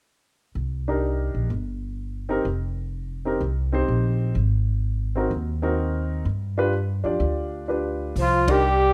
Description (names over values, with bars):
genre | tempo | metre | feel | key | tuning
jazz, small-group swing and bop | 126 BPM | 4/4 | swing 66% on 8ths | C minor | A4 = 440 Hz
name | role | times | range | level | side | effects
upright bass | bass | 0.6-8.9 s | F1 to G2 | -27 LUFS | equal | none
warm concert grand piano | accompaniment | 0.9-8.6 s | C4 to D5 | -28 LUFS | equal | none
dark trumpet | melody | 8.2-8.9 s | F4 to G4 | -22 LUFS | equal | none
breathy tenor saxophone | second line | 8.2-8.9 s | F3 to G3 | -26 LUFS | equal | none
compact cocktail drum kit | drums | 8.2-8.6 s | hi-hat, kick drum, ride cymbal | -33 LUFS | equal | none
room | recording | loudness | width
light reverb | none | -25 LUFS | mono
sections
0.6-8.2 A section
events
band accent 8.4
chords
0.6 Cm7; 2.5 F7sus4; 4.4 Ab7; 6.3 G7; 8.2 Cm7